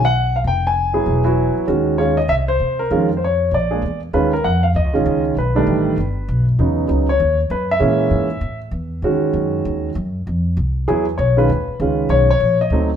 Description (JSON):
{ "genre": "jazz piano trio", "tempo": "196 BPM", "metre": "4/4", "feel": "swing 63% on 8ths", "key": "Eb minor", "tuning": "A4 = 439 Hz", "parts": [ { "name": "warm grand piano", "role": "melody", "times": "0.0-12.9 s", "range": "Db3 to Ab5", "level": "-17 LUFS", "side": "equal", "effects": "none" }, { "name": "upright bass", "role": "bass", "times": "0.0-13.0 s", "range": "E1 to C3", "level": "-19 LUFS", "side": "equal", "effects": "none" } ], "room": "moderate stone room reverb, RT60 1.1 s", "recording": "band playing live in one room", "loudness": "-15 LUFS", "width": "side -8 dB against mid", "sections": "0.0-4.1 A section; 4.1-13.0 A section", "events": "none", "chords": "0.5 Fm; 1.1 Eadd9; 1.7 Ebm9; 2.3 N.C.; 2.9 Bbm11/F; 3.5 Bb7; 4.1 Ebsus2; 5.4 B7alt; 6.6 Esus2; 7.8 Bbm7b5; 8.4 A5; 9.0 Ab5; 10.3 F5; 10.9 Eadd9; 11.5 Ebsus2" }